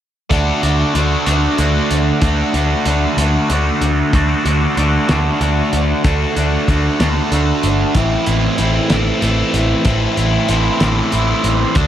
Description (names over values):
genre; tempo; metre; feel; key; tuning
psychedelic rock; 63 BPM (dotted quarters); 6/8; straight; unclear; A4 = 440 Hz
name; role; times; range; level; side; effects
cranked stack guitar; riff; 0.3-11.9 s; A2 to F#4; -16 LUFS; equal; overdrive, phaser
picked electric bass with an envelope filter; bass; 0.3-11.9 s; G1 to D2; -18 LUFS; equal; none
cloth-damped thuddy drum kit; drums; 0.3-11.9 s; hi-hat, kick drum, snare drum; -20 LUFS; equal; none
room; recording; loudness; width
light reverb, small room ambience; none; -13 LUFS; side -10 dB against mid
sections
0.3-11.9 A section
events
none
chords
0.3 D; 8.0 Am